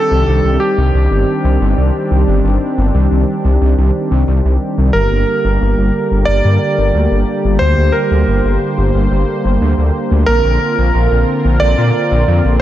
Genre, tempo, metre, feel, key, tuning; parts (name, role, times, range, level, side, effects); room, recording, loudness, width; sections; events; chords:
synthwave; 90 BPM; 4/4; straight; G minor; A4 = 440 Hz
warm electric grand piano; melody; 0.0-12.6 s; G4 to D5; -17 LUFS; right 1 dB; tape echo
warm analog pad; sustained chords; 0.0-12.6 s; D3 to C5; -17 LUFS; right 1 dB; chorus
wide detuned saw bass; bass; 0.1-12.6 s; G1 to Bb2; -13 LUFS; equal; chorus
light reverb; -11 LUFS; side -12 dB against mid
0.0-4.9 A section; 4.9-12.6 B section
0.0 Cmadd9; 4.9 Gm; 10.3 Bbadd9